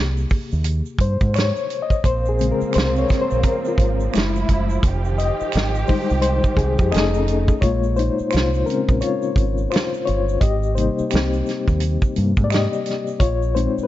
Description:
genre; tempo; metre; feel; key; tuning
R&B, neo-soul; 86 BPM; 4/4; swing 61% on 16ths; Bb dorian; A4 = 440 Hz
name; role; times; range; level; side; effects
reed electric piano; accompaniment; 0.0-13.9 s; Bb2 to Eb5; -22 LUFS; left 4 dB; fast tremolo
deep dub fingered electric bass; bass; 0.0-13.8 s; F1 to Ab2; -21 LUFS; right 1 dB; none
tube shaker and finger snaps; percussion; 0.2-13.9 s; none; -36 LUFS; right 15 dB; none
warm soul drum kit; drums; 0.3-13.8 s; hi-hat, kick drum, snare drum; -21 LUFS; right 1 dB; none
dark studio string section; sustained chords; 2.0-7.6 s; A2 to G4; -27 LUFS; right 5 dB; none
room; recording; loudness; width
light reverb, small room ambience; dark, warm production, nothing above 7.7 kHz; -17 LUFS; side -14 dB against mid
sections
0.0-7.6 A section; 7.6-13.9 B section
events
reed electric piano solo 0.0-7.6, 7.6-13.9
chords
0.0 Abmaj7; 2.0 Bbm9; 4.1 Gbm9; 4.8 Fm9; 6.9 F7alt; 7.6 Bbm9; 10.4 Abmaj7; 13.2 Bbm9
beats
0.65 1.34 | 2.04 2.74 3.44 4.13 | 4.83 5.53 6.23 6.92 | 7.62 8.32 9.02 9.72 | 10.41 11.11 11.81 12.51 | 13.20

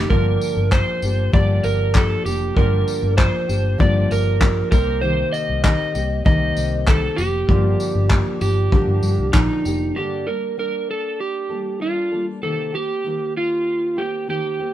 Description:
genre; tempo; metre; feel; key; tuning
acoustic pop; 97 BPM; 4/4; straight; G minor; A4 = 437 Hz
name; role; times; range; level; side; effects
electric slide guitar; melody; 0.0-14.7 s; Eb4 to Eb5; -22 LUFS; right 3 dB; none
bright concert grand piano; accompaniment; 0.0-10.0 s; Bb3 to D5; -36 LUFS; left 2 dB; none
fingerpicked steel-string acoustic guitar; accompaniment; 0.0-14.7 s; G2 to A4; -25 LUFS; left 3 dB; none
vintage muted fingered electric bass; bass; 0.0-9.9 s; F1 to G2; -21 LUFS; equal; none
cloth-damped thuddy drum kit; drums; 0.1-9.8 s; handclaps, kick drum, tambourine; -19 LUFS; left 1 dB; none
room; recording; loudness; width
light reverb; band playing live in one room; -17 LUFS; side -12 dB against mid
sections
0.0-10.0 A section; 10.0-14.7 B section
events
none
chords
0.1 Gm7; 4.7 Cm7; 7.5 Gm7; 10.0 Gmadd9; 12.4 Cm7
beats
| 0.10 0.71 1.33 1.95 | 2.56 3.18 3.79 4.41 | 5.03 5.64 6.26 6.88 | 7.49 8.11 8.72 9.34 | 9.96 10.58 11.20 11.81 | 12.43 13.05 13.67 14.29

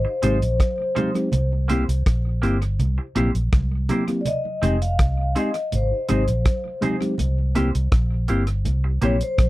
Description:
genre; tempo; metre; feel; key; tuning
lovers rock reggae; 82 BPM; 4/4; straight; F minor; A4 = 441 Hz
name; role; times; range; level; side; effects
vibraphone with medium mallets; melody; 0.0-9.5 s; C5 to F5; -27 LUFS; left 2 dB; tape echo
semi-hollow electric guitar; stabs; 0.0-9.2 s; Ab3 to C5; -29 LUFS; right 3 dB; none
vintage muted fingered electric bass; bass; 0.0-9.5 s; F1 to C2; -21 LUFS; equal; none
mellow tine electric piano; accompaniment; 0.1-9.2 s; Ab3 to G4; -23 LUFS; left 1 dB; none
cloth-damped thuddy drum kit; drums; 0.2-9.5 s; hi-hat, kick drum, rim click; -22 LUFS; equal; none
congas; percussion; 0.2-9.5 s; none; -30 LUFS; right 4 dB; tape echo
room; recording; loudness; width
little or no reverb; dry, close 1970s-style studio recording; -19 LUFS; side -17 dB against mid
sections
0.0-9.5 A section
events
none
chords
0.0 Fm7; 1.3 C7; 4.3 Fm7; 7.2 C7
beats
0.60 | 1.33 2.06 2.79 3.53 | 4.26 4.99 5.72 6.45 | 7.19 7.92 8.65 9.38

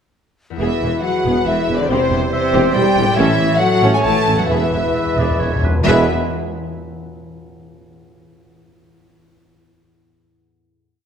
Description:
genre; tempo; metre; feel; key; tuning
cinematic, heroic adventure film score; 129-141 BPM; 3/4; straight; E mixolydian; A4 = 439 Hz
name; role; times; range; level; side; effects
concert harp; arpeggios; 0.5-6.1 s; E2 to E5; -28 LUFS; left 5 dB; none
clear symphonic violin section; melody; 0.6-6.1 s; C5 to A5; -23 LUFS; left 3 dB; none
rich symphonic violin section; second line; 0.6-6.1 s; C5 to A5; -26 LUFS; equal; none
silver concert flute; second line; 0.6-6.1 s; C5 to A5; -26 LUFS; left 2 dB; none
warm clarinet; second line; 0.6-6.1 s; G#4 to E5; -26 LUFS; left 2 dB; none
rich symphonic viola section; accompaniment; 0.6-6.1 s; E3 to A4; -23 LUFS; right 1 dB; none
clear French horn section; sustained chords; 0.6-6.1 s; C4 to A4; -22 LUFS; left 4 dB; none
warm trombone section; sustained chords; 0.6-6.1 s; E3 to A3; -27 LUFS; right 4 dB; none
clear trumpet; stabs; 0.6-6.1 s; B4 to C#5; -26 LUFS; right 2 dB; none
clear symphonic cello section; bass; 0.6-6.1 s; C3 to A3; -24 LUFS; right 3 dB; none
rich studio double bass section; bass; 0.6-6.1 s; E1 to A1; -24 LUFS; right 3 dB; none
warm tuba; bass; 0.6-6.1 s; E1 to A1; -24 LUFS; right 3 dB; none
timpani; percussion; 1.9-6.1 s; E2; -24 LUFS; left 1 dB; none
warm oboe; second line; 4.9-6.1 s; B4 to E5; -28 LUFS; right 1 dB; none
room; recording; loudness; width
wet scoring stage reverb, RT60 1.6 s; none; -14 LUFS; side -7 dB against mid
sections
0.6-5.9 theme; 5.9-7.2 final chord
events
slowing down 2.5-5.9; timpani fill 4.5-5.9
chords
0.6 E; 1.9 C/E; 3.2 A; 4.5 E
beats
| 0.60 1.04 1.47 | 1.90 2.33 2.76 | 3.18 3.62 4.05 | 4.50 4.95 5.41 | 5.87

